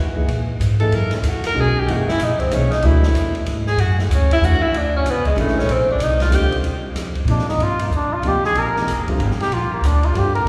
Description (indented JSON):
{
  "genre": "modal jazz",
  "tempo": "189 BPM",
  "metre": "3/4",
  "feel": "swing 63% on 8ths",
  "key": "Eb major from 6.6 s",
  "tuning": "A4 = 440 Hz",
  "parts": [
    { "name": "dark concert grand piano", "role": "accompaniment", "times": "0.0-10.5 s", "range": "C3 to G#4", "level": "-28 LUFS", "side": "equal", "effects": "none" },
    { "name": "upright bass", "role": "bass", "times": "0.0-10.5 s", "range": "F1 to B2", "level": "-21 LUFS", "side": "equal", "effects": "none" },
    { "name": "open jazz drum kit", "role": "drums", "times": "0.2-10.4 s", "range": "hi-hat, kick drum, ride cymbal, snare drum", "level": "-31 LUFS", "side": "equal", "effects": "none" },
    { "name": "clear tenor saxophone", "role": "second line", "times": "0.8-6.6 s", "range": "G#3 to A#4", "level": "-23 LUFS", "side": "equal", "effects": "none" },
    { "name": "dark trumpet", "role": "melody", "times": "7.3-10.5 s", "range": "Bb3 to Bb4", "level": "-22 LUFS", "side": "equal", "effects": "none" }
  ],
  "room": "wet church reverb, RT60 3.2 s",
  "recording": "recorded in a church or concert hall, studio reverb",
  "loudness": "-18 LUFS",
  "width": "mono",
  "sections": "0.0-6.6 A section; 6.6-10.5 A section",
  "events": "tenor saxophone solo 0.0-6.6; trumpet solo 6.6-10.5",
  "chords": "0.0 Bmaj9; 2.8 Dmaj9; 5.7 A#; 6.6 Ebmaj9",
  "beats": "0.29 0.60 | 0.92 1.24 1.56 | 1.88 2.19 2.51 | 2.83 3.15 3.46 | 3.78 4.10 4.42 | 4.74 5.05 5.37 | 5.69 6.00 6.32 | 6.64 6.96 7.28 | 7.59 7.91 8.23 | 8.55 8.87 9.19 | 9.50 9.82 10.14 | 10.46"
}